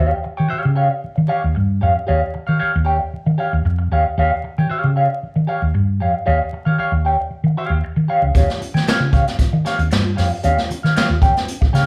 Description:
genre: funk.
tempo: 115 BPM.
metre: 4/4.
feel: straight.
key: unclear.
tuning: A4 = 441 Hz.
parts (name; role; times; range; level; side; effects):
clean electric guitar; accompaniment; 0.0-11.9 s; G4 to G5; -22 LUFS; equal; wah.
hollow-body short-scale fingered electric bass; bass; 0.0-11.9 s; Db2 to Eb3; -20 LUFS; equal; none.
vintage brush drum kit; drums; 8.3-11.9 s; hi-hat, kick drum, snare drum; -20 LUFS; equal; none.
room: moderate large studio reverb, RT60 0.8 s.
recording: band playing live in one room, vinyl crackle.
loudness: -18 LUFS.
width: mono.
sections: 0.0-11.9 A section.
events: none.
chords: 0.0 Eb9.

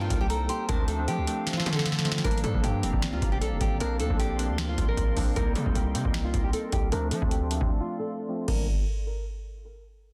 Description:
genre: hip hop, trap.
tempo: 154 BPM.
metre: 4/4.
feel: half-time.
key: G minor.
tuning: A4 = 439 Hz.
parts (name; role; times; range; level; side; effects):
nylon-string guitar; melody; 0.0-8.7 s; F4 to Bb4; -36 LUFS; equal; low-pass filter, digital delay.
soft synth bell; second line; 0.0-2.2 s; A5 to C6; -40 LUFS; equal; chorus, digital delay.
warbly lo-fi synth keys; accompaniment; 0.0-8.7 s; F3 to F4; -36 LUFS; equal; chorus, low-pass filter.
hollow soft pad; sustained chords; 0.0-8.7 s; D4 to C6; -44 LUFS; equal; chorus, low-pass filter.
distorted 808-style bass; bass; 0.0-8.8 s; F1 to F3; -32 LUFS; equal; distortion.
booming analog drum machine; drums; 0.1-8.6 s; crash cymbal, finger snaps, hi-hat, kick drum, snare drum; -30 LUFS; equal; none.
room: little or no reverb.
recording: dense, heavily limited modern master.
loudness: -27 LUFS.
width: mono.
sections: 0.0-2.2 A section; 2.2-8.5 B section; 8.5-10.0 C section.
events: drum fill 1.5-2.2; filter sweep 2.2-8.5; break 7.7-8.5.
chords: 0.0 Cm7; 0.7 Dm7; 2.2 Gm7; 3.8 Bbadd9; 5.4 Cm7; 6.9 Dm7; 8.5 Gm7.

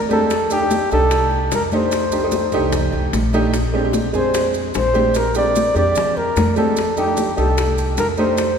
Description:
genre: Afro-Cuban jazz.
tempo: 148 BPM.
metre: 4/4.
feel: straight.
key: F mixolydian.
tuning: A4 = 440 Hz.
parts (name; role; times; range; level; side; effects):
upright bass; bass; 0.0-8.6 s; Bb1 to F2; -23 LUFS; equal; none.
breathy flugelhorn; melody; 0.1-8.6 s; G4 to D5; -19 LUFS; equal; none.
clear upright piano; accompaniment; 0.1-8.5 s; Ab3 to Bb4; -22 LUFS; right 3 dB; none.
bongos; percussion; 0.1-8.6 s; none; -27 LUFS; left 5 dB; none.
congas; percussion; 0.1-8.6 s; none; -25 LUFS; left 1 dB; none.
maracas; percussion; 0.1-8.6 s; none; -32 LUFS; right 4 dB; none.
room: wet church reverb, RT60 3.2 s.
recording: recorded in a church or concert hall.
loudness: -15 LUFS.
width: side -7 dB against mid.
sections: 0.0-8.6 A section.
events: none.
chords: 0.3 F13; 3.5 Bb13; 6.8 F13.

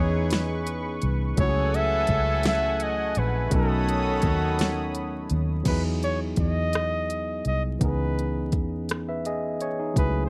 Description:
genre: slow six-eight R&B.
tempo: 56 BPM (dotted quarters).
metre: 6/8.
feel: straight.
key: E major.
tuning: A4 = 440 Hz.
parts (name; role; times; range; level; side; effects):
warm flugelhorn; melody; 0.0-10.3 s; A4 to E5; -31 LUFS; equal; none.
barky tine electric piano; accompaniment; 0.0-10.3 s; E3 to E5; -33 LUFS; equal; none.
lush unison pad; sustained chords; 0.0-5.6 s; A3 to D#6; -37 LUFS; equal; chorus.
warm horn section; stabs; 0.0-5.3 s; D#3 to A4; -36 LUFS; equal; tape echo.
vintage muted fingered electric bass; bass; 0.0-10.3 s; A#1 to E2; -30 LUFS; equal; none.
smooth R&B drum kit; drums; 0.3-10.1 s; crash cymbal, hi-hat, kick drum, rim click, snare drum; -29 LUFS; equal; none.
room: light reverb.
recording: vinyl crackle.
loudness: -25 LUFS.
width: mono.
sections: 0.0-5.7 A section; 5.7-10.3 B section.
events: none.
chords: 0.0 C#m9; 1.4 F#m9/C#; 3.5 B9; 5.7 Emaj7; 7.8 C#m9.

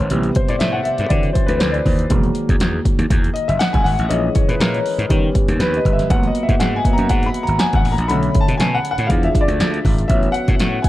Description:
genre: polished 1980s jazz-funk pop.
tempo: 120 BPM.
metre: 4/4.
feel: swing 54% on 16ths.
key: unclear.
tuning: A4 = 441 Hz.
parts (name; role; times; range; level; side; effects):
warm concert grand piano; accompaniment; 0.0-10.9 s; C3 to B5; -19 LUFS; left 1 dB; lush chorus.
gritty slap bass; bass; 0.0-10.8 s; E1 to D#3; -20 LUFS; equal; overdrive.
punchy analog drum machine; drums; 0.1-10.9 s; hi-hat, kick drum, snare drum; -18 LUFS; equal; none.
room: light reverb, digital ambience.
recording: dark, warm production.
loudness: -15 LUFS.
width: side -15 dB against mid.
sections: 0.0-10.9 A section.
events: grand piano solo 0.0-10.9.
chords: 0.1 Am7; 1.1 D9; 2.1 Emaj9#11; 4.1 A#m7b5; 5.1 D#aug7; 6.1 G#m9; 8.1 Bm7; 9.1 E7b9; 10.1 A69.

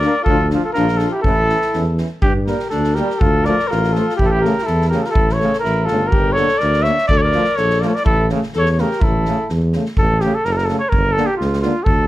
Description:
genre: balkan folk, Balkan brass band.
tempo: 124 BPM.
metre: 2/4.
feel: swing 54% on 16ths.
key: A phrygian dominant.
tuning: A4 = 440 Hz.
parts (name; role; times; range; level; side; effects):
mellow trumpet; melody; 0.0-12.1 s; F4 to E5; -18 LUFS; equal; plate reverb.
warm alto saxophone; second line; 0.0-9.5 s; D4 to C#5; -24 LUFS; left 5 dB; none.
brilliant trombone; accompaniment; 0.0-11.7 s; C#3 to Bb3; -26 LUFS; right 5 dB; none.
warm French horn; accompaniment; 0.0-11.7 s; A3 to D4; -24 LUFS; left 4 dB; none.
mellow tuba; bass; 0.0-12.1 s; F#1 to G2; -19 LUFS; equal; none.
street-band drum kit; percussion; 0.0-12.0 s; kick drum, snare drum; -21 LUFS; equal; none.
room: light reverb.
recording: none.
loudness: -14 LUFS.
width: side -15 dB against mid.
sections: 0.0-2.2 A section; 2.2-10.0 B section; 10.0-12.1 A section.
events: speeding up 0.0-12.1.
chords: 0.3 Dm; 1.3 A; 2.2 Gm; 3.2 Dm; 4.2 A; 6.1 Gm; 7.1 Dm; 8.1 A; 10.9 Gm.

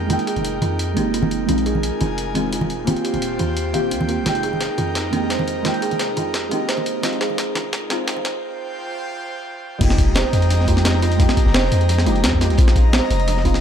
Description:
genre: liquid drum and bass.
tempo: 173 BPM.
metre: 4/4.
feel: straight.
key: F minor.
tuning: A4 = 440 Hz.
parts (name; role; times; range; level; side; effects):
deep mellow chord stab; accompaniment; 0.0-13.6 s; Ab3 to G5; -24 LUFS; right 1 dB; chorus, phaser, digital delay.
airy breathy pad; sustained chords; 0.0-13.6 s; Ab3 to Bb5; -28 LUFS; left 1 dB; chorus, sidechain pumping.
long sustained 808-style bass; bass; 0.0-13.6 s; Eb1 to F2; -21 LUFS; equal; none.
buzzing kalimba; arpeggios; 0.1-13.6 s; F3 to F5; -26 LUFS; right 5 dB; vintage 12-bit sampler grit, low-pass filter, ping-pong delay.
breakbeat sampler-style drum kit; drums; 0.1-13.6 s; crash cymbal, hi-hat, snare drum; -24 LUFS; equal; high-pass filter on hats, high-pass filter on snare, high-pass filter on cymbals, high-pass filter on room.
congas; percussion; 0.1-8.2 s; none; -26 LUFS; right 1 dB; none.
crunchy breakbeat drum kit; drums; 9.8-13.6 s; hi-hat, snare drum; -31 LUFS; equal; none.
electronic kick drum; drums; 9.8-13.5 s; none; -18 LUFS; equal; none.
sub drop; sound effects; 9.9-11.2 s; none; -30 LUFS; left 1 dB; none.
room: light reverb, studio reverb.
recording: dark, warm production, high-pass filter.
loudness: -17 LUFS.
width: side -8 dB against mid.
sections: 0.0-9.8 A section; 9.8-13.6 B section.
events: build-up 0.0-9.8; filter sweep 0.0-9.8; drum fill 4.3-8.4; break 8.4-9.8; drop 9.8-13.6; impact 9.8-11.2.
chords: 0.0 Fm11; 1.5 Bb7sus4; 2.7 Eb69; 4.3 Fm11; 7.0 Bb7sus4; 8.2 Eb69 (rootless); 9.8 Fm11; 12.6 Bb7sus4.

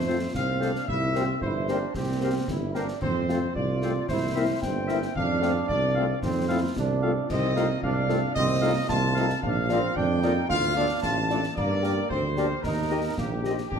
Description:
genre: military-style march for wind band.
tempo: 112 BPM.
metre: 2/4.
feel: straight.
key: F major.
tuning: A4 = 438 Hz.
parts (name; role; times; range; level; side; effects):
mellow trumpet section; melody; 0.0-13.8 s; G4 to A5; -30 LUFS; left 1 dB; none.
warm trombone section; sustained chords; 0.0-13.8 s; A3 to F4; -31 LUFS; right 3 dB; none.
mellow tuba; bass; 0.0-13.8 s; G1 to G2; -28 LUFS; right 2 dB; none.
mellow woodwind section; second line; 0.1-13.5 s; G4 to F5; -36 LUFS; left 2 dB; none.
mellow French horn section; accompaniment; 0.1-13.5 s; A3 to G4; -32 LUFS; left 5 dB; none.
concert snare drum, concert bass drum and clash cymbals; drums; 0.3-13.8 s; none; -34 LUFS; left 2 dB; none.
room: wet large studio reverb, RT60 1.3 s.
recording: lossy compression artefacts.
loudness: -23 LUFS.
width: side -7 dB against mid.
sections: 0.0-13.8 A section.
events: none.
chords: 0.0 F; 0.9 C7; 3.0 F; 4.1 C7; 5.2 F7/C; 9.4 Bb; 10.5 Dm; 11.6 Gm; 12.6 Eb.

